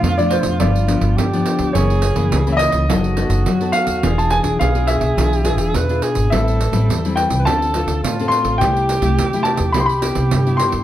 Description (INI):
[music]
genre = samba and choro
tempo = 105 BPM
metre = 4/4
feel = straight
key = A minor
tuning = A4 = 440 Hz
[part]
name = warm baby grand piano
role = melody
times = 0.0-10.8 s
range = C5 to C6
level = -21 LUFS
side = left 1 dB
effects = slapback echo
[part]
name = breathy tenor saxophone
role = second line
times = 0.0-10.8 s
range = F4 to B4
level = -23 LUFS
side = right 3 dB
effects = none
[part]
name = nylon-string guitar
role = accompaniment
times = 0.0-10.8 s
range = F#2 to A4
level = -21 LUFS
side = left 4 dB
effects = none
[part]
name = upright bass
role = bass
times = 0.0-10.8 s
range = E1 to D3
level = -19 LUFS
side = equal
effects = none
[part]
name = pandeiro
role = percussion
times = 0.0-10.8 s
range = none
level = -24 LUFS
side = right 6 dB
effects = none
[sound]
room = moderate studio reverb, RT60 0.5 s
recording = dark, warm production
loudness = -14 LUFS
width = side -12 dB against mid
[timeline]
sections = 0.0-10.8 A section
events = none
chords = 0.0 Bm7b5; 0.6 G7; 1.7 F#7; 2.9 B7/F#; 4.0 E7b9; 6.3 Am7; 7.5 Dm7; 8.6 Am7/C; 9.8 Cmaj7